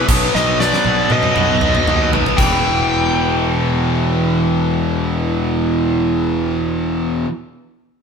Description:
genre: hard rock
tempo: 118 BPM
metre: 4/4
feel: straight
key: E harmonic minor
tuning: A4 = 440 Hz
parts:
  - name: smooth overdriven lead guitar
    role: melody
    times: 0.0-7.2 s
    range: D5 to G5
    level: -20 LUFS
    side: equal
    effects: none
  - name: cranked stack guitar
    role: riff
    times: 0.0-7.3 s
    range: E2 to B3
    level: -22 LUFS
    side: right 6 dB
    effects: overdrive, phaser
  - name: high-gain distorted guitar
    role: riff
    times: 0.0-7.3 s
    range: E2 to B3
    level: -23 LUFS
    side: equal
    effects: distortion
  - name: overdriven electric guitar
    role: riff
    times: 0.0-7.3 s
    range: E2 to B3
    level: -20 LUFS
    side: left 4 dB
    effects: spring reverb
  - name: fuzz fingered electric bass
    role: bass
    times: 0.1-7.2 s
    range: E1 to B2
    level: -22 LUFS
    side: equal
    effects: overdrive
  - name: huge arena drum kit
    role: drums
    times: 0.1-2.5 s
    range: crash cymbal, kick drum, snare drum, toms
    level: -19 LUFS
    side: right 1 dB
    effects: none
room: moderate stone room reverb, RT60 1.0 s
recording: band playing live in one room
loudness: -14 LUFS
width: side -6 dB against mid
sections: 0.0-2.4 A section; 2.4-6.5 B section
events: drum fill 0.3-2.4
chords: 0.1 B; 2.4 Em

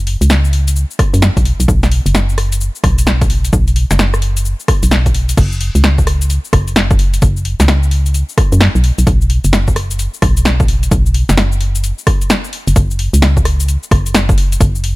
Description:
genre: UK garage, two-step garage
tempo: 130 BPM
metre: 4/4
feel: swing 64% on 16ths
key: unclear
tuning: A4 = 440 Hz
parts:
  - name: organ-like FM bass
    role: bass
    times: 0.0-14.9 s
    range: F#1 to F#2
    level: -13 LUFS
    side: equal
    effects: sidechain pumping
  - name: house drum kit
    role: drums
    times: 0.1-15.0 s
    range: crash cymbal, hi-hat, rim click, shaker, snare drum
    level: -17 LUFS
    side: equal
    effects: none
  - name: electronic kick drum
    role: drums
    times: 1.0-14.7 s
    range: none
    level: -14 LUFS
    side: equal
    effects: none
room: digital ambience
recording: none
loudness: -10 LUFS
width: side -20 dB against mid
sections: 0.0-5.4 A section; 5.4-15.0 B section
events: drop 5.4-15.0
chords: none

